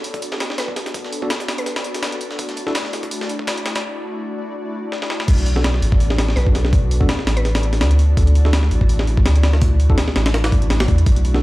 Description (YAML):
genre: drum and bass, jungle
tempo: 166 BPM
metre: 4/4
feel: swing 55% on 16ths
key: B minor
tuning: A4 = 438 Hz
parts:
  - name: airy breathy pad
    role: sustained chords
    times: 0.0-11.4 s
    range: A3 to D5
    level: -27 LUFS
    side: left 1 dB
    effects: chorus
  - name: breakbeat sampler-style drum kit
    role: drums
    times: 0.0-11.4 s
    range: crash cymbal, hi-hat, kick drum, snare drum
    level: -19 LUFS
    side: equal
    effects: high-pass filter on hats, high-pass filter on snare, high-pass filter on kick, high-pass filter on cymbals
  - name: breakbeat sampler-style drum kit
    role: drums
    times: 0.0-3.8 s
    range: hi-hat, snare drum, tambourine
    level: -31 LUFS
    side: equal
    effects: overdrive, high-pass filter on perc, high-pass filter on snare, high-pass filter on hats, high-pass filter on room
  - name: mallet-like synth pluck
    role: melody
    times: 0.6-1.8, 6.4-7.6 s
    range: B4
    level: -31 LUFS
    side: equal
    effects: chorus, dub echo
  - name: tine electric piano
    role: stabs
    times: 1.2-2.7, 5.6-11.4 s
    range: B3 to A4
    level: -29 LUFS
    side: right 1 dB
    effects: none
  - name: saturated sub bass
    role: bass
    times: 5.3-11.4 s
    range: A1 to E2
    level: -16 LUFS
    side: equal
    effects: tube saturation
room: digital ambience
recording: played on a big sound system in a bare room, large studio reverb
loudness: -16 LUFS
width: side -18 dB against mid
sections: 0.0-5.3 A section; 5.3-11.4 B section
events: build-up 0.0-5.3; break 3.8-5.3; drum fill 4.9-5.3; drop 5.3-11.4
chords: 0.0 Bm7; 2.4 Dadd9; 5.3 Bm7; 8.2 Dadd9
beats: 0.22 0.58 | 0.94 1.30 1.67 2.03 | 2.39 2.75 3.11 3.47 | 3.83 4.20 4.56 4.92 | 5.28 5.64 6.00 6.36 | 6.73 7.09 7.45 7.81 | 8.17 8.53 8.89 9.26 | 9.62 9.98 10.34 10.70 | 11.06 11.43